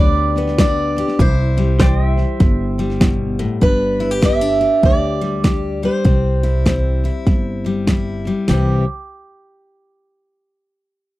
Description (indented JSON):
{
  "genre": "honky-tonk and classic country",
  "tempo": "99 BPM",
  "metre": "4/4",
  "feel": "swing 62% on 8ths",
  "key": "C major",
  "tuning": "A4 = 439 Hz",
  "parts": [
    { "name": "picked swing-style acoustic guitar", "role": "melody", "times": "0.0-8.8 s", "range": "G4 to E5", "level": "-20 LUFS", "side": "right 2 dB", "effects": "none" },
    { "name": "picked steel-string acoustic guitar", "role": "accompaniment", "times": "0.0-8.8 s", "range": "G2 to G4", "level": "-21 LUFS", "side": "left 3 dB", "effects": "none" },
    { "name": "pedal steel guitar", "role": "sustained chords", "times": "0.0-3.6 s", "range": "B4 to G5", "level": "-28 LUFS", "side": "right 2 dB", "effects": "none" },
    { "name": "upright bass", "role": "bass", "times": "0.0-8.8 s", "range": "G1 to D2", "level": "-19 LUFS", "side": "equal", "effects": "none" },
    { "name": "pop drum kit", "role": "drums", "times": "0.4-8.7 s", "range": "hi-hat, kick drum, snare drum", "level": "-16 LUFS", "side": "equal", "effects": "none" }
  ],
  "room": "little or no reverb",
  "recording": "dry, close 1970s-style studio recording",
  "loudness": "-14 LUFS",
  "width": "side -17 dB against mid",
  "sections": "0.0-3.6 A section; 3.6-8.5 B section; 8.5-10.9 C section",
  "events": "none",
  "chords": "0.0 G; 1.2 C; 3.6 G; 6.1 C"
}